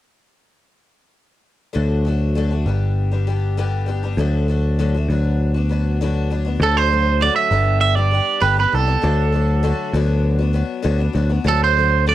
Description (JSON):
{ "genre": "rock", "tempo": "99 BPM", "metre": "4/4", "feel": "straight", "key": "D mixolydian", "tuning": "A4 = 439 Hz", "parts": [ { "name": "picked twelve-string acoustic guitar", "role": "accompaniment", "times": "1.7-12.1 s", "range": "G2 to G4", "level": "-25 LUFS", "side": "left 7 dB", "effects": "none" }, { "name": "picked electric bass", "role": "bass", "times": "1.8-12.1 s", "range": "G1 to D2", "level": "-18 LUFS", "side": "equal", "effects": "none" }, { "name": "twangy electric guitar", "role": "melody", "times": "6.6-12.1 s", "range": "A4 to E5", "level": "-17 LUFS", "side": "right 7 dB", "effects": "cassette tape" } ], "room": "little or no reverb", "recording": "home recording on cassette", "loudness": "-16 LUFS", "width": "side -14 dB against mid", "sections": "1.8-6.6 A section; 6.6-12.1 B section", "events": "none", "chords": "1.8 D; 2.7 G; 4.2 D; 5.1 Bm/D; 6.6 D; 7.5 G; 9.0 D; 9.9 Bm/D; 11.5 D" }